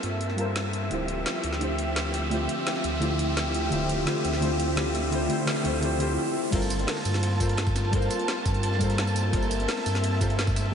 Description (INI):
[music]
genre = liquid drum and bass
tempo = 171 BPM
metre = 4/4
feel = straight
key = G dorian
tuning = A4 = 440 Hz
[part]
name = deep mellow chord stab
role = accompaniment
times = 0.0-10.7 s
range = D3 to C5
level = -29 LUFS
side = left 1 dB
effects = chorus, cassette tape, analog delay
[part]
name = dark studio string section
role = sustained chords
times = 0.0-10.7 s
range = F3 to A5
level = -31 LUFS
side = equal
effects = vintage 12-bit sampler grit, sidechain pumping
[part]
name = sub bass with octave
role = bass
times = 0.0-10.7 s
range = D1 to G2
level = -29 LUFS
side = equal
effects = none
[part]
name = drum and bass drum kit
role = drums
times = 0.0-10.6 s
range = crash cymbal, hi-hat, snare drum, tambourine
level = -32 LUFS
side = equal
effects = overdrive, high-pass filter on hats, studio reverb, high-pass filter on snare, high-pass filter on cymbals, high-pass filter on perc
[part]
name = riser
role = sound effects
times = 0.0-6.5 s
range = none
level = -37 LUFS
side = equal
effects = none
[part]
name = crunchy breakbeat drum kit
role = drums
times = 6.5-10.7 s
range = hi-hat, ride cymbal, snare drum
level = -37 LUFS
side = equal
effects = high-pass filter on cymbals, studio reverb, high-pass filter on hats, high-pass filter on snare, high-pass filter on room
[part]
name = electronic kick drum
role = drums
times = 6.5-10.5 s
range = none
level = -29 LUFS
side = equal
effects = overdrive, studio reverb
[sound]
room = wet cathedral reverb, RT60 4.7 s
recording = dreamy mix soaked in reverb, nothing above 10.9 kHz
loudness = -24 LUFS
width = side -7 dB against mid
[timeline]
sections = 0.0-6.5 A section; 6.5-10.7 B section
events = build-up 0.0-6.5; riser 0.0-6.5; drop 6.5-10.7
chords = 0.0 Gm11; 0.9 Dm11; 6.5 Gm11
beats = 0.21 0.56 | 0.91 1.26 1.61 1.97 | 2.32 2.67 3.02 3.37 | 3.72 4.07 4.42 4.77 | 5.12 5.47 5.83 6.17 | 6.53 6.88 7.23 7.58 | 7.93 8.28 8.63 8.98 | 9.33 9.68 10.04 10.39 | 10.74